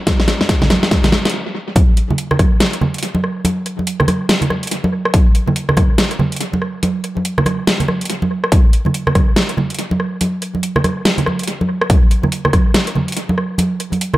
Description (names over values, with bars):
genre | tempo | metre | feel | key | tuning
dubstep | 142 BPM | 4/4 | swing 61% on 16ths, half-time | none | none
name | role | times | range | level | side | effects
dubstep drum kit | drums | 0.1-14.2 s | hi-hat, rim click, snare drum | -18 LUFS | equal | analog delay
electronic kick drum | drums | 0.1-2.5, 5.1-5.9, 8.5-9.3, 11.9-12.6 s | none | -13 LUFS | equal | none
congas | percussion | 0.1-14.2 s | none | -18 LUFS | right 1 dB | dub echo
room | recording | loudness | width
moderate spring reverb, RT60 1.5 s, digital ambience | echo-heavy mix | -14 LUFS | side -16 dB against mid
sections
0.0-1.8 A section; 1.8-14.2 B section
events
build-up 0.0-1.8; drum fill 0.0-1.3; stop 1.3-1.8; drop 1.8-14.2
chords
none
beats
| 0.07 0.49 0.91 1.33 | 1.76 2.18 2.60 3.02 | 3.45 3.87 4.29 4.71 | 5.14 5.56 5.98 6.41 | 6.83 7.25 7.67 8.10 | 8.52 8.94 9.36 9.79 | 10.21 10.63 11.05 11.48 | 11.90 12.32 12.74 13.17 | 13.59 14.01